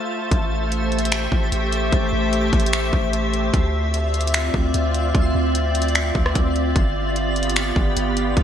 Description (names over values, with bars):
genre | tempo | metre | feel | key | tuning
hip hop, atmospheric cloud-rap | 149 BPM | 4/4 | half-time | A minor | A4 = 439 Hz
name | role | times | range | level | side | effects
glassy FM pad | sustained chords | 0.0-8.4 s | A3 to E5 | -22 LUFS | equal | ensemble chorus, built-in reverb
twinkling granular texture | texture | 0.0-8.4 s | F4 to C6 | -34 LUFS | equal | built-in reverb, ensemble chorus
long sustained 808-style bass | bass | 0.3-8.4 s | G1 to D2 | -23 LUFS | equal | none
trap drum kit | drums | 0.3-8.4 s | finger snaps, hi-hat, kick drum, rim click | -21 LUFS | equal | vintage 12-bit sampler grit, gated reverb
room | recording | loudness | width
moderate lush hall reverb, RT60 1.8 s | bright 1980s-style digital production | -18 LUFS | side -9 dB against mid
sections
0.3-8.4 A section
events
break 0.0-0.3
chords
0.3 Am7; 3.5 Dm9; 6.8 G7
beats
| 0.31 0.72 1.12 1.52 | 1.93 2.33 2.73 3.13 | 3.54 3.94 4.34 4.74 | 5.15 5.55 5.95 6.35 | 6.76 7.16 7.56 7.96 | 8.37